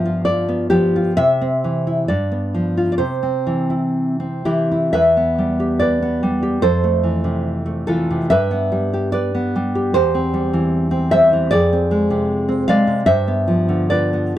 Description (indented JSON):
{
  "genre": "romantic piece for solo classical guitar",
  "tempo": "56-78 BPM",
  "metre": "2/4",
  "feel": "rubato",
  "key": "C major",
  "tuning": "A4 = 440 Hz",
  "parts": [
    { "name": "nylon-string guitar", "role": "solo", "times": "0.0-14.4 s", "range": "E2 to F5", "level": "-15 LUFS", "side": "equal", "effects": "none" }
  ],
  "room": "light reverb",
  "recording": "dry, close 1970s-style studio recording",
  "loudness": "-15 LUFS",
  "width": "side -12 dB against mid",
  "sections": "0.0-5.0 A section; 5.0-14.4 A section",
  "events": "none",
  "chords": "0.0 G7; 1.2 C; 2.1 G7; 3.0 C; 5.0 Em; 6.6 Fmaj7; 8.3 G; 9.9 C/E; 11.5 Dm7b5/F; 13.1 G7"
}